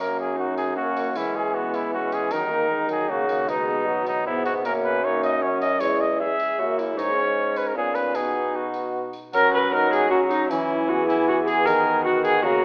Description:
classical, renaissance-style consort dance; 154 BPM; 3/4; straight; F# mixolydian; A4 = 440 Hz
warm cornet; melody; 0.0-12.6 s; D#4 to A#5; -28 LUFS; equal
warm viola; second line; 0.0-12.6 s; A#3 to B4; -28 LUFS; equal
clear trombone; accompaniment; 0.0-12.6 s; F#3 to D#4; -33 LUFS; equal
concert harp; accompaniment; 0.0-12.6 s; E2 to B4; -37 LUFS; equal
warm bassoon; bass; 0.0-12.6 s; E2 to F#3; -29 LUFS; equal
tambourine; percussion; 0.6-12.4 s; -51 LUFS; equal
wet recital hall reverb, RT60 1.6 s; telephone sound; -23 LUFS; mono
0.0-9.3 A section; 9.3-12.6 A section
0.0 F#; 1.2 E; 2.3 D#m; 3.5 B; 4.6 F#; 5.8 E; 7.0 G#m; 8.1 B; 9.3 F#; 10.5 E; 11.7 D#m
0.38 0.77 | 1.16 1.55 1.94 | 2.33 2.71 3.10 | 3.49 3.88 4.26 | 4.65 5.03 5.42 | 5.81 6.20 6.58 | 6.97 7.36 7.75 | 8.15 8.54 8.94 | 9.33 9.72 10.11 | 10.50 10.89 11.28 | 11.67 12.06 12.45

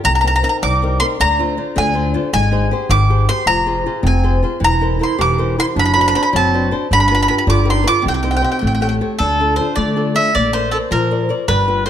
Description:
italian folk, Italian serenade; 105 BPM (dotted quarters); 6/8; straight; A4 = 435 Hz
mandolin; melody; 0.0-11.9 s; A4 to D6; -17 LUFS; right 1 dB
flamenco guitar; accompaniment; 0.0-11.9 s; C3 to D5; -21 LUFS; left 3 dB
upright bass; bass; 0.1-11.9 s; E1 to D3; -18 LUFS; equal
warm clarinet; second line; 4.0-9.0 s; C4 to G4; -22 LUFS; right 5 dB
light reverb; close, detailed microphones; -13 LUFS; side -10 dB against mid
0.0-9.2 A section; 9.2-11.9 B section
0.0 Cm7; 1.2 Dm7b5; 2.3 Abmaj7; 3.5 Fm; 4.6 C7/E; 5.8 D7/F#; 6.9 G7; 8.0 Cm; 8.6 A7; 9.2 Dm; 10.3 Bbadd9
| 0.04 0.62 | 1.19 1.76 | 2.33 2.89 | 3.46 4.03 | 4.61 5.18 | 5.76 6.33 | 6.90 7.46 | 8.04 8.61 | 9.19 9.77 | 10.34 10.91 | 11.48

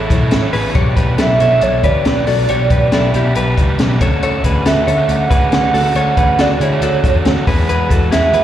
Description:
jangly indie pop; 138 BPM; 4/4; straight; A4 = 437 Hz
crunchy overdriven guitar; accompaniment; 0.0-8.4 s; B2 to C#5; -20 LUFS; right 5 dB; spring reverb, plate reverb, slapback echo
direct-recorded clean electric guitar; arpeggios; 0.0-8.4 s; E4 to C#5; -20 LUFS; left 3 dB; plate reverb, slapback echo, tape echo
vintage muted picked electric bass; bass; 0.0-8.4 s; A1 to E3; -17 LUFS; left 1 dB
compact cocktail drum kit; drums; 0.1-8.4 s; hi-hat, kick drum, snare drum; -17 LUFS; equal
hollow clarinet-like synth lead; melody; 1.2-8.4 s; C#5 to F#5; -16 LUFS; right 2 dB; chorus, plate reverb, slapback echo, tape echo
moderate club reverb, RT60 0.7 s; live gig heard through the venue's PA, recital hall reverb; -11 LUFS; side -11 dB against mid
0.0-8.4 A section
0.0 Aadd9; 0.8 G6/B; 4.0 Dmaj7; 7.5 Eadd9
0.32 | 0.76 1.19 1.62 2.06 | 2.49 2.92 3.36 3.79 | 4.23 4.66 5.09 5.53 | 5.96 6.39 6.83 7.26 | 7.69 8.12

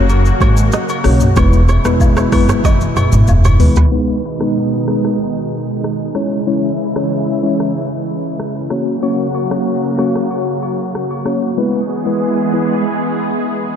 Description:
afrobeats; 94 BPM; 4/4; straight; G# minor; A4 = 440 Hz
mellow tine electric piano; accompaniment; 0.0-12.8 s; G#3 to C#5; -18 LUFS; left 2 dB; fast stereo tremolo
warm analog pad; sustained chords; 0.0-13.8 s; B2 to G#4; -19 LUFS; right 1 dB; chorus
upright bass; bass; 0.0-3.9 s; E1 to D#2; -13 LUFS; equal
afro-pop drum kit; drums; 0.1-11.6 s; hi-hat, kick drum, rim click, shaker, toms; -18 LUFS; equal
agogo bells and woodblock; percussion; 0.1-3.6, 9.0-11.2 s; -29 LUFS; left 4 dB
kora; riff; 0.4-3.9 s; B4 to D#5; -23 LUFS; right 4 dB; ping-pong delay
moderate huge ambient reverb, RT60 4.5 s; dreamy mix soaked in reverb, low-pass filter; -13 LUFS; side -8 dB against mid
0.0-3.9 A section; 3.9-13.8 B section
drum fill 2.6-3.9; filter sweep 3.9-13.8
0.0 F#; 1.4 E; 3.9 G#m; 6.2 C#m; 8.7 F#; 11.6 E
0.09 0.73 | 1.36 2.00 2.64 3.28 | 3.92 4.56 5.20 5.83 | 6.47 7.11 7.75 8.39 | 9.02 9.66 10.30 10.94 | 11.58 12.22 12.85 13.49

